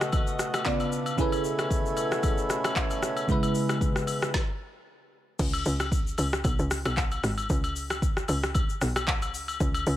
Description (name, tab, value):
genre	amapiano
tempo	114 BPM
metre	4/4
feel	swing 55% on 16ths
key	unclear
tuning	A4 = 440 Hz
part	bell-like FM electric piano	accompaniment	0.0-4.4 s	C#3 to D#5	-29 LUFS	right 1 dB	chorus, phaser
part	pedal harmonium	sustained chords	0.0-4.3 s	B2 to G#5	-32 LUFS	right 1 dB	none
part	afro-pop drum kit	drums	0.0-10.0 s	crash cymbal, handclaps, hi-hat, kick drum, rim click, shaker, snare drum	-28 LUFS	equal	none
part	agogo bells and woodblock	percussion	0.1-9.9 s	none	-34 LUFS	left 4 dB	none
part	tight log drum bass	bass	5.4-10.0 s	G#1 to C#2	-29 LUFS	equal	none
room	little or no reverb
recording	none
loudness	-25 LUFS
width	side -13 dB against mid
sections	0.0-5.4 A section; 5.4-10.0 B section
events	stop 4.3-5.4; drop 5.4-10.0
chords	0.0 B9; 0.7 C#7b9; 1.2 B13sus4; 3.3 E6/B; 5.4 C#5; 7.5 Bsus2